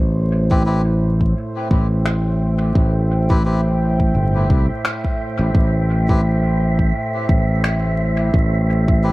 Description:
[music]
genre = ambient dub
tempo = 86 BPM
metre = 4/4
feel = swing 56% on 16ths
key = A minor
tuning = A4 = 440 Hz
[part]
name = warm analog pad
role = sustained chords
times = 0.0-9.1 s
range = A2 to G5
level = -24 LUFS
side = right 1 dB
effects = chorus
[part]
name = fingered electric bass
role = bass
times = 0.0-9.1 s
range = G1 to C2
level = -17 LUFS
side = equal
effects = tube saturation
[part]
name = wind-like tuned noise texture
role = texture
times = 0.9-9.1 s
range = E5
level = -29 LUFS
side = right 2 dB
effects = built-in reverb
[part]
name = melodica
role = stabs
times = 0.5-9.1 s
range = C4 to B4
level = -28 LUFS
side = left 2 dB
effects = dub echo
[part]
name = electronic kick drum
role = drums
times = 0.5-9.0 s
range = none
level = -18 LUFS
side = equal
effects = none
[part]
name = electronic finger snaps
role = drums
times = 2.1-7.8 s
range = none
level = -27 LUFS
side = left 1 dB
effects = dub echo
[sound]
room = light reverb, digital ambience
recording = vinyl crackle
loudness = -15 LUFS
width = side -19 dB against mid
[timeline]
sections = 0.0-9.1 A section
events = none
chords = 0.0 Am7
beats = 0.66 1.36 2.06 | 2.75 3.45 4.15 4.85 | 5.54 6.24 6.94 7.64 | 8.34 9.03

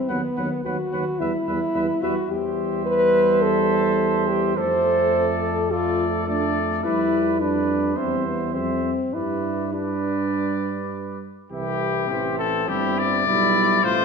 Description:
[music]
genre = classical, brass quintet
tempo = 99-109 BPM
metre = 4/4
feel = rubato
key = C major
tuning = A4 = 440 Hz
[part]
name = warm French horn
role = accompaniment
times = 0.0-14.0 s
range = B3 to C5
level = -22 LUFS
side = left 2 dB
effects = none
[part]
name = warm trumpet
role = melody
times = 0.1-14.0 s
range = G4 to F#5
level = -27 LUFS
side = left 9 dB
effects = none
[part]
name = mellow trumpet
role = second line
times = 0.1-14.0 s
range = C4 to C5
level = -28 LUFS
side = right 6 dB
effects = none
[part]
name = warm euphonium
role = accompaniment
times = 0.1-14.0 s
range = E3 to A3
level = -28 LUFS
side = right 6 dB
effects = none
[part]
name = warm tuba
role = bass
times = 0.1-14.0 s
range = G1 to G2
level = -29 LUFS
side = right 2 dB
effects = none
[sound]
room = wet scoring stage reverb, RT60 1.6 s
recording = minimal, uncompressed stereo recording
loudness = -20 LUFS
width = side -5 dB against mid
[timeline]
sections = 0.0-11.5 A section; 11.5-14.0 B section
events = none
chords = 0.1 B/D#; 1.2 Em; 2.3 C/E; 4.6 Dm7/F; 6.8 G7/F; 8.0 C/E; 9.1 G; 11.5 C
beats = | 0.09 0.65 1.20 1.75 | 2.30 2.86 3.42 3.98 | 4.57 5.14 5.71 6.28 | 6.84 7.40 7.97 8.54 | 9.13 9.73 10.32 10.92 | 11.52 12.10 12.68 13.27 | 13.84

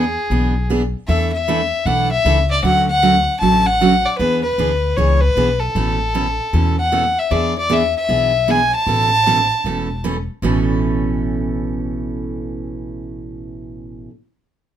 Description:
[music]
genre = country, western swing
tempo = 154 BPM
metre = 4/4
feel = swing 65% on 8ths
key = A major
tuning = A4 = 439 Hz
[part]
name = warm fiddle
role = melody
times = 0.0-10.0 s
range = G#4 to A5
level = -17 LUFS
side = left 2 dB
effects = none
[part]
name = picked steel-string acoustic guitar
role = accompaniment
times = 0.0-14.1 s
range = A2 to A4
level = -20 LUFS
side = right 4 dB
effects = none
[part]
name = upright bass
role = bass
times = 0.0-14.0 s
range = E1 to E2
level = -21 LUFS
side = left 1 dB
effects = none
[sound]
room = light reverb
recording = none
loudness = -15 LUFS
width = side -10 dB against mid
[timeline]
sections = 0.0-7.3 A section; 7.3-10.4 B section; 10.4-13.5 C section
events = none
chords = 0.0 E7; 1.1 E7sus4; 2.6 Dmaj7; 4.2 E7; 5.8 Aadd9; 7.3 E7; 8.9 Aadd9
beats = 0.31 0.70 | 1.09 1.48 1.86 2.25 | 2.64 3.03 3.42 3.81 | 4.20 4.59 4.98 5.37 | 5.75 6.14 6.53 6.92 | 7.31 7.70 8.09 8.48 | 8.87 9.26 9.65 10.04 | 10.43 10.81 11.20 11.59 | 11.98 12.37 12.76 13.15

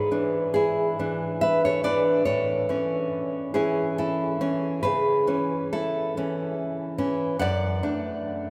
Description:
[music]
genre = romantic piece for solo classical guitar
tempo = 70 BPM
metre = 3/4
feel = rubato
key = A major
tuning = A4 = 441 Hz
[part]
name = nylon-string guitar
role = solo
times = 0.0-8.5 s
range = F#2 to F#5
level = -25 LUFS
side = equal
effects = none
[sound]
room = wet cathedral reverb, RT60 6.3 s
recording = recorded in a church or concert hall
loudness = -25 LUFS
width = mono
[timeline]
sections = 0.0-8.5 A section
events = none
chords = 0.0 E7/G#; 2.3 A; 4.8 A/C#; 7.4 D/F#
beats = 0.56 1.44 | 2.29 3.15 3.99 | 4.84 5.72 6.57 | 7.40 8.25

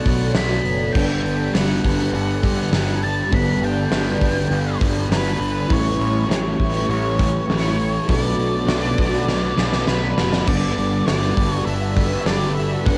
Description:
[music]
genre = rock, shoegaze and dream pop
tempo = 101 BPM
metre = 4/4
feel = straight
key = G lydian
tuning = A4 = 440 Hz
[part]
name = octave-fuzz lead guitar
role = melody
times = 0.0-13.0 s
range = B4 to B5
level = -29 LUFS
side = equal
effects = distortion, cassette tape, tape echo
[part]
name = phased analog pad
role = sustained chords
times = 0.0-13.0 s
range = G3 to D5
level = -30 LUFS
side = equal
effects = phaser, chorus, cassette tape
[part]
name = clean electric guitar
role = riff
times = 0.0-13.0 s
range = G2 to E4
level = -27 LUFS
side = equal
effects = reverse reverb, cassette tape
[part]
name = thick fuzz guitar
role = riff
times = 0.0-13.0 s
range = G2 to B3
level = -27 LUFS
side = equal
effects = distortion, lush chorus, cassette tape
[part]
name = growling fingered electric bass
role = bass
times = 0.1-13.0 s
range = F#1 to B1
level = -28 LUFS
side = equal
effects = overdrive
[part]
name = gated 80s drum kit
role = drums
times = 0.1-13.0 s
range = crash cymbal, hi-hat, kick drum, snare drum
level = -25 LUFS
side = equal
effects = cassette tape
[sound]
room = light reverb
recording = home recording on cassette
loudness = -20 LUFS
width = mono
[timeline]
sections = 0.0-10.5 A section; 10.5-13.0 A section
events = drum fill 9.3-10.5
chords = 0.0 Bm7; 0.9 Gmaj7; 5.7 A7; 8.1 Bm7; 10.5 Gmaj7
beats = 0.35 | 0.95 1.54 2.13 2.73 | 3.33 3.92 4.51 5.11 | 5.71 6.30 6.90 7.50 | 8.09 8.69 9.28 9.88 | 10.48 11.07 11.67 12.27 | 12.86

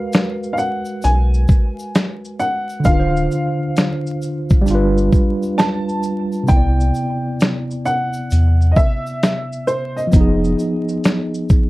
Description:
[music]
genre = lo-fi hip hop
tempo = 66 BPM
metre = 4/4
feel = swing 65% on 16ths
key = unclear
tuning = A4 = 440 Hz
[part]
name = dark upright piano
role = melody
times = 0.0-11.7 s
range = C5 to A5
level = -23 LUFS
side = equal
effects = none
[part]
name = tine electric piano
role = accompaniment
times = 0.0-11.7 s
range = C3 to D5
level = -21 LUFS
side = equal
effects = medium stereo tremolo
[part]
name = dusty soul sampler-style drum kit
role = drums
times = 0.1-11.7 s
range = hi-hat, kick drum, shaker, snare drum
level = -14 LUFS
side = equal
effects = vintage 12-bit sampler grit
[part]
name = tube shaker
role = percussion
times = 0.1-11.7 s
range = none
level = -43 LUFS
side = left 3 dB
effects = none
[part]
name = soft dub sub bass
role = bass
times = 1.0-10.6 s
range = D1 to E2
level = -15 LUFS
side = equal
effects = none
[sound]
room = light reverb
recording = dark, warm production, vinyl crackle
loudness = -15 LUFS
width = side -19 dB against mid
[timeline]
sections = 0.0-11.7 A section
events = none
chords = 0.0 Abm9; 2.9 Dm7; 4.7 G7; 6.5 Cmaj9; 10.1 Fm7b5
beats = 0.13 1.04 1.95 | 2.86 3.77 4.68 5.58 | 6.49 7.40 8.31 9.22 | 10.13 11.04

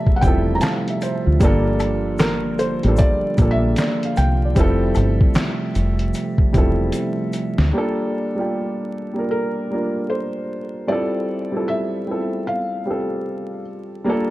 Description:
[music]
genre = lo-fi hip hop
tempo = 76 BPM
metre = 4/4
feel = swing 62% on 16ths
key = G dorian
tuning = A4 = 439 Hz
[part]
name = felt-muted upright piano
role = melody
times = 0.0-13.6 s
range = Bb4 to Bb5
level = -26 LUFS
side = equal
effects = low-pass filter, tape echo
[part]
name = dark upright piano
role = accompaniment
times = 0.0-14.3 s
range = G3 to Bb5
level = -22 LUFS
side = equal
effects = cassette tape, low-pass filter
[part]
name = pipe organ, stopped flute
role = sustained chords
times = 0.0-7.7 s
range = C3 to E5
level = -27 LUFS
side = right 2 dB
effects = low-pass filter
[part]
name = lo-fi sampler-style drum kit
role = drums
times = 0.1-7.7 s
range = handclaps, hi-hat, kick drum, snare drum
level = -19 LUFS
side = equal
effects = none
[part]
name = deep dub fingered electric bass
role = bass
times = 0.2-7.7 s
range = E1 to D2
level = -19 LUFS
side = equal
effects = none
[part]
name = tube shaker and woodblock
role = percussion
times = 0.2-7.6 s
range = none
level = -38 LUFS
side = left 8 dB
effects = none
[sound]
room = light reverb, studio ambience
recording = dark, warm production, vinyl crackle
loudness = -18 LUFS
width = side -17 dB against mid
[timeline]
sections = 0.0-7.7 A section; 7.7-14.3 B section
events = drum fill 6.9-7.7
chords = 0.0 Fmaj9; 1.4 Gm7; 4.6 Fmaj9; 7.7 Gm7; 10.9 Fmaj9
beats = 0.62 | 1.41 2.19 2.98 3.77 | 4.56 5.35 6.14 6.93 | 7.72 8.51 9.30 10.09 | 10.88 11.67 12.46 13.25 | 14.04

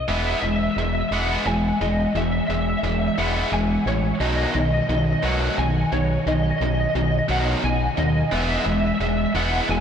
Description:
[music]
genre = post-rock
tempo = 88 BPM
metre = 3/4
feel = straight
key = E major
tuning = A4 = 440 Hz
[part]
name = twelve-string electric guitar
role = melody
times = 0.0-9.8 s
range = C#5 to G#5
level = -25 LUFS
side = equal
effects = ensemble chorus, analog delay
[part]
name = growling fingered electric bass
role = bass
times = 0.0-9.8 s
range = E1 to D#2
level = -25 LUFS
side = equal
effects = overdrive
[part]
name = tight distorted guitar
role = riff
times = 0.1-9.8 s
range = B2 to B3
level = -22 LUFS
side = equal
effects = distortion
[sound]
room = wet huge ambient reverb, RT60 7.9 s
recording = dreamy mix soaked in reverb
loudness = -19 LUFS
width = side -8 dB against mid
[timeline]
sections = 0.1-9.8 A section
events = build-up 0.1-9.8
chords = 0.1 E; 4.2 B; 8.3 E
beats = | 0.09 0.77 1.46 | 2.15 2.83 3.52 | 4.21 4.89 5.58 | 6.26 6.95 7.64 | 8.32 9.01 9.69

